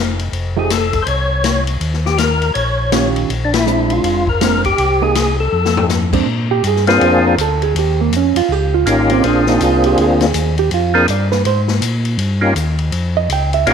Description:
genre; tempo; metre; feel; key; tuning
soul jazz organ trio; 162 BPM; 4/4; swing 63% on 8ths; Bb mixolydian; A4 = 440 Hz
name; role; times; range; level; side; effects
mellow tonewheel organ; bass; 0.0-13.7 s; F1 to Bb2; -18 LUFS; left 1 dB; chorus vibrato, slow rotary speaker
open jazz drum kit; drums; 0.2-13.7 s; crash cymbal, hi-hat, kick drum, ride cymbal, snare drum, toms; -21 LUFS; left 7 dB; none
percussive tonewheel organ; melody; 0.6-13.7 s; Bb3 to Db5; -16 LUFS; left 2 dB; slow rotary speaker, overdrive, chorus vibrato
hollow-body jazz guitar; accompaniment; 0.6-0.7, 2.9-13.7 s; Eb3 to G5; -18 LUFS; right 12 dB; none
room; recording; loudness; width
moderate echo chamber reverb, RT60 1.4 s, small room ambience; 1960s-style stereo with parts hard left and right; -13 LUFS; side -7 dB against mid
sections
0.0-6.3 A section; 6.3-13.7 B section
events
band accent 3.5; drum fill 5.5-5.9; hollow-body jazz guitar solo 6.3-13.7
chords
0.3 F; 1.8 Eb9; 3.3 Bb9; 4.8 Cm7; 5.5 F; 6.3 Bb9; 7.7 Eb9; 9.2 Bb9; 12.2 Eb9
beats
| 0.33 0.70 1.07 1.44 | 1.81 2.18 2.55 2.92 | 3.29 3.67 4.04 4.41 | 4.78 5.15 5.52 5.89 | 6.26 6.63 7.00 7.38 | 7.75 8.12 8.49 8.86 | 9.23 9.60 9.97 10.34 | 10.71 11.08 11.45 11.82 | 12.19 12.56 12.93 13.30 | 13.66

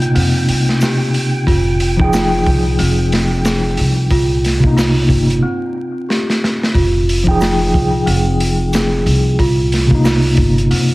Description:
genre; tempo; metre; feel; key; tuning
trip hop; 91 BPM; 4/4; swing 59% on 16ths; F minor; A4 = 440 Hz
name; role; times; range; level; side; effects
mellow tine electric piano; accompaniment; 0.0-10.9 s; C3 to G5; -16 LUFS; equal; slow stereo tremolo, tape echo
large celesta; arpeggios; 0.0-10.9 s; C4 to Ab4; -20 LUFS; right 1 dB; tape echo
upright bass; bass; 0.0-10.9 s; F1 to F2; -17 LUFS; equal; none
crunchy breakbeat drum kit; drums; 0.0-10.9 s; hi-hat, kick drum, snare drum; -18 LUFS; equal; none
wind-like tuned noise texture; texture; 0.0-5.4 s; G5; -29 LUFS; right 2 dB; built-in reverb
egg shaker; percussion; 0.8-10.2 s; none; -34 LUFS; left 2 dB; none
room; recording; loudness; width
little or no reverb; vinyl crackle; -12 LUFS; side -20 dB against mid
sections
0.0-6.7 A section; 6.7-10.9 A section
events
break 5.4-6.7; drum fill 6.1-6.7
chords
0.0 Cm7; 1.5 Fm9; 4.1 Cm7; 6.7 Fm9; 9.4 Cm7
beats
0.15 0.81 | 1.47 2.13 2.79 3.45 | 4.11 4.77 5.43 6.09 | 6.75 7.41 8.07 8.72 | 9.38 10.04 10.70

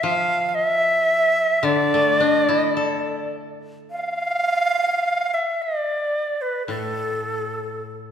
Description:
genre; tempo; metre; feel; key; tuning
japanese traditional, Japanese chamber music; 54 BPM; 2/4; uneven beats, rubato; D minor; A4 = 441 Hz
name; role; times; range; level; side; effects
breathy bright shakuhachi; melody; 0.0-8.0 s; A4 to F5; -20 LUFS; right 1 dB; none
koto; accompaniment; 0.0-8.1 s; A2 to A4; -25 LUFS; left 4 dB; none
room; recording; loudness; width
wet concert hall reverb, RT60 2.0 s; recorded in a church or concert hall; -19 LUFS; side -8 dB against mid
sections
0.0-4.5 A section; 4.5-8.1 B section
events
none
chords
none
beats
| 0.03 1.11 | 2.20 3.33 | 4.47 5.59 | 6.69 7.74

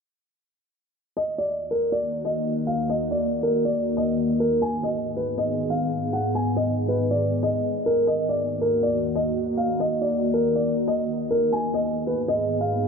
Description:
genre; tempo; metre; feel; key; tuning
hip hop; 139 BPM; 4/4; half-time; Eb harmonic minor; A4 = 440 Hz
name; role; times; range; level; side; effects
dark grand piano; melody; 1.2-12.9 s; Bb4 to Ab5; -24 LUFS; equal; low-pass filter
glassy FM pad; sustained chords; 2.0-12.9 s; Eb2 to Ab4; -25 LUFS; left 1 dB; ensemble chorus, built-in reverb
room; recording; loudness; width
moderate lush hall reverb, RT60 2.4 s; low-pass filter; -22 LUFS; side -5 dB against mid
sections
1.2-12.9 A section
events
filter sweep 1.2-12.9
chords
1.2 Ebm; 4.6 Abm; 8.1 Ebm; 11.5 Abm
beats
| 1.17 1.60 2.03 2.46 | 2.89 3.33 3.76 4.19 | 4.62 5.05 5.48 5.92 | 6.35 6.78 7.21 7.64 | 8.07 8.51 8.94 9.37 | 9.80 10.23 10.66 11.10 | 11.53 11.96 12.39 12.82

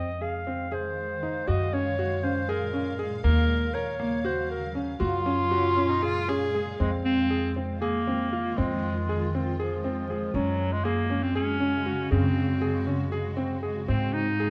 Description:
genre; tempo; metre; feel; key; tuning
contemporary instrumental, chamber music in an uneven meter; 237 BPM (eighths); 7/8; straight; F phrygian; A4 = 442 Hz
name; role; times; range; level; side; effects
clear clarinet; melody; 0.0-14.5 s; F3 to F5; -31 LUFS; equal; none
granular cloud pad; sustained chords; 0.8-14.5 s; Bb2 to F5; -38 LUFS; equal; built-in reverb
clear baby grand piano; arpeggios; 0.0-14.5 s; Db3 to Bb4; -33 LUFS; equal; none
upright bass; bass; 0.0-14.5 s; Eb2 to Ab2; -32 LUFS; equal; none
rich viola; second line; 5.5-6.8 s; Db4 to Ab4; -33 LUFS; equal; none
room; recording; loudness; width
light reverb; dark, warm production; -27 LUFS; mono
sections
0.0-6.8 A section; 6.8-14.5 B section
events
none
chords
0.0 Fm7; 1.5 Gbmaj9; 3.2 Ebm9; 5.0 Gbmaj9; 6.8 Fm7; 10.3 Gbsus2; 13.9 Ab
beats
0.21 0.47 0.72 0.97 1.23 | 1.48 1.73 1.98 2.23 2.48 2.73 2.99 | 3.24 3.49 3.74 4.00 4.25 4.50 4.75 | 5.01 5.26 5.51 5.77 6.03 6.28 6.54 | 6.80 7.06 7.31 7.57 7.82 8.08 8.33 | 8.59 8.84 9.09 9.34 9.59 9.84 10.09 | 10.34 10.59 10.85 11.10 11.35 11.60 11.85 | 12.11 12.36 12.61 12.87 13.12 13.38 13.63 | 13.89 14.14 14.40

